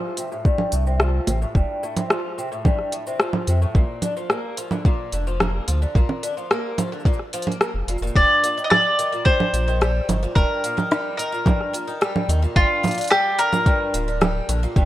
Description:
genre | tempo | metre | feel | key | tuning
folktronica | 109 BPM | 4/4 | straight | Bb major | A4 = 441 Hz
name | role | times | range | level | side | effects
picked twelve-string acoustic guitar | arpeggios | 0.0-14.9 s | G2 to Bb3 | -27 LUFS | left 1 dB | wide subtle chorus, low-pass filter, tape echo
organic electronic drum kit | drums | 0.2-14.9 s | cabasa, congas, hi-hat, rim click | -23 LUFS | right 1 dB | none
electronic kick drum | drums | 0.5-14.9 s | none | -18 LUFS | equal | none
warm sub bass | bass | 0.7-14.9 s | D1 to F2 | -21 LUFS | equal | none
bowl-back mandolin | melody | 8.2-14.9 s | F4 to Eb5 | -20 LUFS | equal | vintage 12-bit sampler grit
room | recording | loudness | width
light reverb | rough home demo mix | -18 LUFS | side -14 dB against mid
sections
0.0-14.9 A section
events
filter sweep on twelve-string acoustic guitar 0.0-14.9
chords
0.0 Fadd9; 3.8 Bb; 8.2 Eb; 12.6 Gm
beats
0.45 1.00 | 1.55 2.10 2.65 3.21 | 3.76 4.31 4.86 5.41 | 5.96 6.51 7.06 7.61 | 8.16 8.71 9.26 9.81 | 10.36 10.91 11.46 12.01 | 12.56 13.11 13.66 14.21 | 14.77

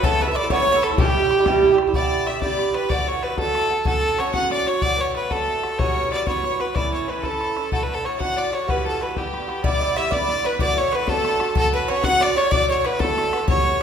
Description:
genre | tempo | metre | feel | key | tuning
celtic folk, Celtic jig | 125 BPM (dotted quarters) | 6/8 | straight | E dorian | A4 = 439 Hz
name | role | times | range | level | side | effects
bright fiddle | melody | 0.0-13.8 s | G4 to F#5 | -22 LUFS | equal | none
Irish bouzouki | second line | 0.0-1.7, 9.6-13.8 s | G4 to F#5 | -28 LUFS | right 5 dB | none
clear fiddle | second line | 0.0-13.8 s | G4 to F#5 | -27 LUFS | left 6 dB | none
Irish bouzouki | accompaniment | 0.0-13.8 s | G2 to A4 | -24 LUFS | right 5 dB | none
bodhran | percussion | 0.0-13.6 s | none | -26 LUFS | left 2 dB | none
room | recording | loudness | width
wet recital hall reverb, RT60 1.6 s | minimal, uncompressed stereo recording | -18 LUFS | side -8 dB against mid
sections
0.0-1.9 A section; 1.9-9.6 B section; 9.6-13.8 B section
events
none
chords
0.0 Aadd9; 1.0 Em; 1.9 Em7; 2.9 D; 3.9 F#m; 4.8 D; 5.8 Emadd9; 6.8 A; 7.7 D; 8.7 Emadd9; 9.6 Em7; 10.6 D; 11.6 F#m; 12.5 D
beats
| 0.03 0.51 | 0.98 1.46 | 1.94 2.42 | 2.90 3.38 | 3.86 4.34 | 4.83 5.31 | 5.79 6.27 | 6.75 7.23 | 7.71 8.20 | 8.68 9.16 | 9.64 10.12 | 10.60 11.08 | 11.56 12.04 | 12.52 12.99 | 13.47

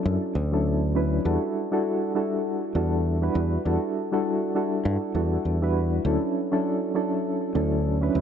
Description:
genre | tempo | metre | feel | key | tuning
sunset chillout | 100 BPM | 4/4 | swing 56% on 16ths | E dorian | A4 = 440 Hz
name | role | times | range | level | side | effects
soft electric-piano-like synth keys | accompaniment | 0.0-8.2 s | F#3 to B4 | -24 LUFS | equal | chorus, tremolo, auto-pan, low-pass filter, ping-pong delay
fingered electric bass | bass | 0.1-8.2 s | D2 to G2 | -24 LUFS | equal | none
room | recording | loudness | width
moderate lush hall reverb, RT60 2.2 s | none | -23 LUFS | side -8 dB against mid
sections
0.0-8.2 A section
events
none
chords
0.0 Dmaj9; 1.3 Em11; 6.1 Dmaj9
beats
0.05 0.65 | 1.25 1.85 2.45 3.05 | 3.65 4.25 4.85 5.45 | 6.05 6.65 7.25 7.85

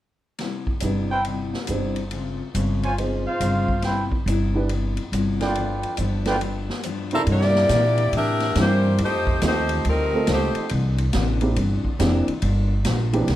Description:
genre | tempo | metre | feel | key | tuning
jazz, big band swing | 140 BPM | 4/4 | swing 65% on 8ths | C major, C mixolydian from 7.3 s | A4 = 440 Hz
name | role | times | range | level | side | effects
picked steel-string acoustic guitar | accompaniment | 0.4-13.4 s | G2 to G4 | -29 LUFS | left 5 dB | none
swinging big-band drum kit | drums | 0.4-13.4 s | hi-hat, kick drum, ride cymbal, snare drum | -29 LUFS | equal | none
warm concert grand piano | accompaniment | 0.8-13.3 s | C3 to D5 | -27 LUFS | right 3 dB | none
upright bass | bass | 0.8-13.4 s | F1 to Bb2 | -23 LUFS | equal | none
mellow trumpet section | stabs | 1.1-7.2 s | E4 to Bb5 | -26 LUFS | right 1 dB | none
bright saxophone section | melody | 7.1-10.7 s | G3 to E5 | -22 LUFS | left 1 dB | none
room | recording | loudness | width
moderate large studio reverb, RT60 1.1 s | dark, warm production | -20 LUFS | side -13 dB against mid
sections
0.4-7.3 A section; 7.3-13.4 B section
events
break 6.4-7.3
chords
0.4 Cmaj7; 2.1 Dbmaj7; 3.8 Cmaj7; 5.6 G7; 7.3 C9; 9.0 F9; 10.7 C9; 12.4 Gm7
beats
| 0.40 0.83 1.26 1.69 | 2.12 2.55 2.98 3.41 | 3.84 4.27 4.70 5.13 | 5.56 5.99 6.42 6.85 | 7.28 7.71 8.14 8.56 | 8.99 9.42 9.85 10.28 | 10.71 11.14 11.57 12.00 | 12.43 12.86 13.29

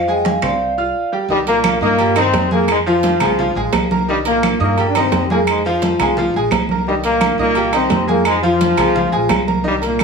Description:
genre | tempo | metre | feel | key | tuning
latin, salsa | 172 BPM | 4/4 | straight | unclear | A4 = 437 Hz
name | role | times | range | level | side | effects
upright bass | bass | 0.0-10.0 s | Bb1 to G2 | -24 LUFS | right 1 dB | none
vibraphone with medium mallets | melody | 0.1-1.1 s | D5 to Ab5 | -19 LUFS | right 1 dB | none
bright grand piano | accompaniment | 0.1-10.0 s | Eb3 to F6 | -19 LUFS | equal | none
congas | percussion | 0.1-10.0 s | none | -22 LUFS | right 1 dB | none
timbales and agogo bells | percussion | 0.2-10.0 s | none | -22 LUFS | right 8 dB | none
claves | percussion | 0.4-10.0 s | none | -27 LUFS | equal | none
bright trombone section | melody | 1.3-10.0 s | G2 to F4 | -17 LUFS | left 2 dB | none
room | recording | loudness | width
moderate studio reverb, RT60 0.8 s | studio ambience | -13 LUFS | side -5 dB against mid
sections
0.0-1.3 A section; 1.3-10.0 B section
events
break 0.6-1.3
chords
0.0 Fm; 1.3 Cm7; 2.7 Fm; 4.1 Cm7; 5.5 Fm; 6.9 Cm7; 8.3 Fm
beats
0.25 0.60 0.94 | 1.29 1.64 1.99 2.34 | 2.69 3.04 3.38 3.73 | 4.08 4.43 4.78 5.12 | 5.47 5.82 6.17 6.52 | 6.87 7.21 7.56 7.91 | 8.26 8.61 8.96 9.30 | 9.65 10.00

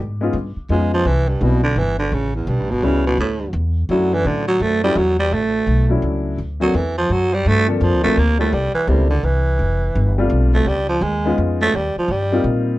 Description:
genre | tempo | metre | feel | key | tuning
jazz, small-group swing and bop | 168 BPM | 3/4 | swing 63% on 8ths | unclear | A4 = 440 Hz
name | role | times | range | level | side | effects
upright bass | bass | 0.0-12.8 s | F1 to Bb2 | -19 LUFS | equal | none
dark upright piano | accompaniment | 0.2-12.8 s | F3 to Bb4 | -21 LUFS | left 3 dB | none
growling baritone saxophone | second line | 0.7-12.5 s | E2 to Bb3 | -19 LUFS | right 2 dB | none
room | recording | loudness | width
light reverb | dark, warm production | -16 LUFS | side -17 dB against mid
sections
0.0-5.3 A section; 5.3-12.8 A section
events
baritone saxophone solo 0.0-12.8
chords
0.0 C#9; 1.1 Cmaj7; 2.1 A13; 3.2 Dmaj7; 5.3 Dmaj9; 6.4 D; 7.5 Gm11; 8.5 C13; 9.6 F69; 10.7 C#9; 11.7 Eb69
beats
0.34 0.70 | 1.05 1.41 1.76 | 2.12 2.48 2.83 | 3.19 3.54 3.90 | 4.25 4.61 4.97 | 5.32 5.68 6.03 | 6.39 6.75 7.10 | 7.46 7.82 8.17 | 8.53 8.88 9.24 | 9.60 9.95 10.31 | 10.66 11.02 11.38 | 11.73 12.09 12.45

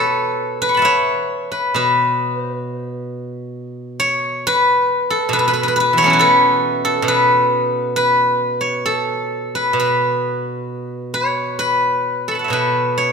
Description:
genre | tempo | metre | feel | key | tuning
chinese traditional | 66 BPM | 4/4 | rubato | unclear | A4 = 440 Hz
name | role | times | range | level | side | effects
steel-string zither | solo | 0.0-13.1 s | B2 to C#6 | -15 LUFS | equal | none
room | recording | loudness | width
moderate concert hall reverb, RT60 2.0 s | minimal, uncompressed stereo recording | -15 LUFS | side -5 dB against mid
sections
0.0-13.1 A section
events
none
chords
none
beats
0.85 | 1.76 2.67 3.57 4.45 | 5.31 6.17 7.05 7.93 | 8.82 9.74 10.66 11.59 | 12.51

